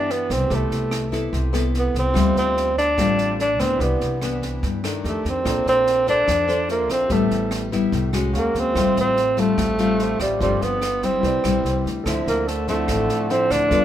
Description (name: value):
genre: bossa nova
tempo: 145 BPM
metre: 4/4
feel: straight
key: C major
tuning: A4 = 437 Hz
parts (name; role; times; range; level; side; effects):
- breathy tenor saxophone; melody; 0.0-13.8 s; G3 to D4; -21 LUFS; right 1 dB; none
- nylon-string guitar; accompaniment; 0.0-13.8 s; G2 to C5; -24 LUFS; left 4 dB; none
- warm grand piano; accompaniment; 0.0-13.8 s; E4 to C6; -32 LUFS; right 3 dB; none
- upright bass; bass; 0.0-13.8 s; G1 to G2; -26 LUFS; right 1 dB; none
- open jazz drum kit; drums; 0.1-13.8 s; kick drum, rim click, snare drum; -31 LUFS; right 1 dB; none
- clear trombone; second line; 12.1-13.8 s; D3 to F3; -29 LUFS; right 3 dB; none
room: light reverb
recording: minimal, uncompressed stereo recording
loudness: -18 LUFS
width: side -11 dB against mid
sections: 0.0-12.1 A section; 12.1-13.8 B section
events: none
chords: 0.0 Cmaj9; 0.5 Am9/C; 2.2 Dm11; 3.8 Cmaj9; 5.0 F13; 5.5 Bbmaj9; 7.1 Am13; 8.3 Ebm11; 8.8 Fmaj9/A; 10.4 G9sus4; 11.2 Cmaj7; 12.1 Dm9